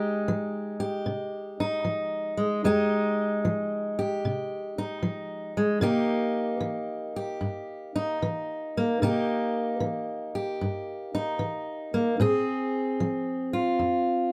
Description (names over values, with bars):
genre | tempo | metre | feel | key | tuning
blues | 75 BPM | 4/4 | swing 67% on 8ths | F minor | A4 = 440 Hz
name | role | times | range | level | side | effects
fingerpicked steel-string acoustic guitar | solo | 0.0-14.3 s | F2 to Ab4 | -28 LUFS | equal | none
room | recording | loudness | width
moderate studio ambience, RT60 0.5 s | close, detailed microphones | -28 LUFS | mono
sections
0.0-14.3 A section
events
none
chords
0.0 Fm9; 5.8 C7#9; 12.2 Bbsus2